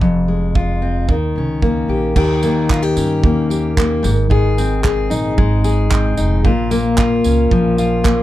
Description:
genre	acoustic pop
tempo	112 BPM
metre	4/4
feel	straight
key	unclear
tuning	A4 = 439 Hz
part	fingerpicked steel-string acoustic guitar	accompaniment	0.0-8.2 s	F2 to Ab4	-16 LUFS	left 2 dB	none
part	upright bass	bass	0.0-8.2 s	F1 to G2	-19 LUFS	right 1 dB	none
part	modern studio drum kit	drums	0.0-8.2 s	crash cymbal, handclaps, kick drum, tambourine	-19 LUFS	right 2 dB	none
room	little or no reverb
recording	dark, warm production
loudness	-13 LUFS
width	side -14 dB against mid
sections	0.0-2.2 A section; 2.2-8.2 B section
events	none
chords	0.0 Fm; 1.1 Eb7; 4.0 Ab; 6.4 Bbm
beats	| 0.01 0.55 1.09 1.62 | 2.16 2.70 3.23 3.77 | 4.30 4.84 5.38 5.91 | 6.45 6.98 7.52 8.05

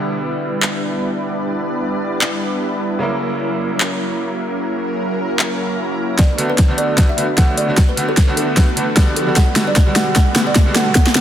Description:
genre	future bass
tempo	151 BPM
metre	4/4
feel	swing 56% on 16ths, half-time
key	B minor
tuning	A4 = 445 Hz
part	bright concert grand piano	accompaniment	0.0-11.2 s	C#3 to F#4	-24 LUFS	right 1 dB	sidechain pumping, dub echo
part	shimmering ambient pad	sustained chords	0.0-11.2 s	B2 to D5	-28 LUFS	left 1 dB	chorus, built-in reverb, vintage 12-bit sampler grit, sidechain pumping
part	supersaw chords	riff	0.0-11.2 s	F#3 to D5	-22 LUFS	equal	sidechain pumping, low-pass filter
part	big-room dance drum kit	drums	0.6-11.2 s	handclaps, hi-hat, snare drum	-18 LUFS	equal	overdrive
part	kalimba	melody	6.2-11.1 s	A4 to F#5	-22 LUFS	right 2 dB	sidechain pumping
part	electronic kick drum	drums	6.2-11.0 s	none	-13 LUFS	equal	none
part	riser	sound effects	8.8-11.2 s	none	-28 LUFS	left 1 dB	none
room	light reverb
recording	dense, heavily limited modern master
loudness	-14 LUFS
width	side -10 dB against mid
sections	0.0-6.2 A section; 6.2-11.2 B section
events	filter sweep on ambient pad 0.0-6.2; build-up 6.2-11.2; drum fill 6.2-11.2; filter sweep on supersaw synth 6.2-11.2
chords	0.0 Em7; 3.0 F#7; 6.2 Bm7; 9.2 Gmaj7/B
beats	0.23 0.62 1.02 | 1.42 1.82 2.21 2.61 | 3.01 3.41 3.80 4.20 | 4.60 5.00 5.39 5.79 | 6.19 6.58 6.98 7.38 | 7.78 8.17 8.57 8.97 | 9.37 9.76 10.16 10.56 | 10.96

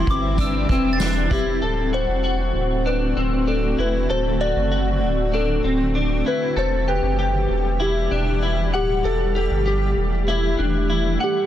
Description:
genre	dream pop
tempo	97 BPM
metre	4/4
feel	straight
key	unclear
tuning	A4 = 443 Hz
part	soft synth bell	melody	0.0-11.5 s	G4 to E6	-25 LUFS	left 1 dB	chorus, phaser, tape echo
part	mellow electric guitar	accompaniment	0.0-1.6 s	E3 to B4	-32 LUFS	right 5 dB	tremolo, analog chorus
part	granular cloud pad	sustained chords	0.0-11.5 s	B2 to G4	-26 LUFS	equal	built-in reverb
part	clean electric guitar	arpeggios	0.0-11.5 s	C4 to F#5	-24 LUFS	left 2 dB	analog chorus, tape echo
part	warm sub bass	bass	0.0-11.2 s	D1 to G1	-23 LUFS	equal	none
part	soft-mallet drum kit	drums	0.1-1.5 s	hi-hat, kick drum, snare drum, tambourine	-24 LUFS	equal	none
part	glockenspiel with soft plastic mallets	texture	0.9-1.9 s	A6 to C7	-34 LUFS	right 3 dB	tape echo
room	light reverb, small room ambience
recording	dense, heavily limited modern master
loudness	-18 LUFS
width	side -11 dB against mid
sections	0.0-1.6 A section; 1.6-11.5 B section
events	none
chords	0.0 Cmaj7; 1.6 D7; 6.6 Em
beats	0.38 1.00 | 1.62 2.24 2.86 3.48 | 4.09 4.71 5.33 5.95 | 6.57 7.19 7.81 8.43 | 9.04 9.66 10.28 10.90

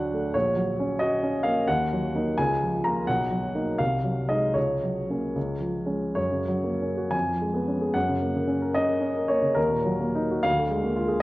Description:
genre	classical, romantic character piece for solo piano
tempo	60-92 BPM (dotted quarters)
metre	6/8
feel	rubato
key	F# major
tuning	A4 = 440 Hz
part	warm baby grand piano	solo	0.0-11.2 s	A#1 to A#5	-23 LUFS	equal	none
room	moderate concert hall reverb, RT60 2.4 s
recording	worn, warbling old tape, cassette tape, warbly pitch drift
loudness	-23 LUFS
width	side -18 dB against mid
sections	0.0-6.2 A section; 6.2-11.2 B section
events	none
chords	0.3 F#/A#; 1.7 D#m; 2.4 A#m/C#; 3.1 Bmaj7; 3.8 G#7/B#; 4.6 F#/C#; 5.4 C#; 6.2 F#; 7.1 C#7/E#; 8.0 F#; 9.6 D#m; 10.4 A#7/D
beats	| 0.35 1.00 | 1.68 2.38 | 3.07 3.80 | 4.56 5.36 | 6.17 7.13 | 7.95 8.76 | 9.56 10.45 | 11.21

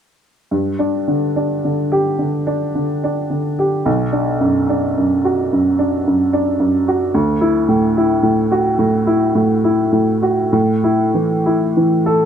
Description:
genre	neoclassical minimalist piano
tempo	72 BPM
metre	4/4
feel	rubato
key	unclear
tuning	A4 = 440 Hz
part	warm upright piano	solo	0.5-12.3 s	B1 to A4	-14 LUFS	equal	none
room	moderate studio reverb, RT60 0.6 s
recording	dark, warm production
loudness	-14 LUFS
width	side -8 dB against mid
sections	0.5-12.3 A section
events	none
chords	0.5 G5; 3.9 Bm; 7.2 Dadd9; 10.5 A5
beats	| 0.51 1.36 2.20 3.04 | 3.87 4.69 5.52 6.34 | 7.15 7.97 8.79 9.64 | 10.54 11.45

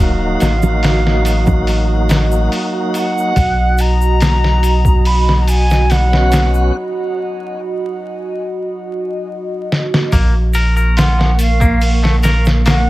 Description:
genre	trip hop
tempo	71 BPM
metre	4/4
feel	straight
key	unclear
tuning	A4 = 438 Hz
part	silver concert flute	melody	0.0-12.9 s	F5 to B5	-21 LUFS	right 1 dB	tape echo
part	tonewheel organ	accompaniment	0.0-6.8, 12.9 s	Gb3 to Gb4	-20 LUFS	equal	overdrive, fast rotary speaker, tremolo, tape echo
part	dark analog pad	sustained chords	0.0-12.9 s	Bb3 to Db6	-22 LUFS	right 1 dB	chorus
part	round analog bass	bass	0.0-12.9 s	Eb1 to B1	-14 LUFS	equal	none
part	trip hop sampler-style drum kit	drums	0.4-12.9 s	hi-hat, kick drum, snare drum	-17 LUFS	equal	studio reverb
part	egg shaker and congas	percussion	0.4-12.8 s	none	-23 LUFS	right 2 dB	none
part	twangy electric guitar	arpeggios	10.1-12.8 s	F3 to Bb4	-21 LUFS	left 2 dB	tape echo
room	little or no reverb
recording	vinyl crackle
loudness	-12 LUFS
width	side -17 dB against mid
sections	0.0-10.1 A section; 10.1-12.9 B section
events	break 6.7-10.1; drum fill 9.7-10.1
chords	0.0 Ebm; 3.4 Bsus2; 10.1 Bbm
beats	0.83 1.68 2.52 | 3.37 4.21 5.06 5.90 | 6.75 7.59 8.44 9.28 | 10.13 10.97 11.82 12.66

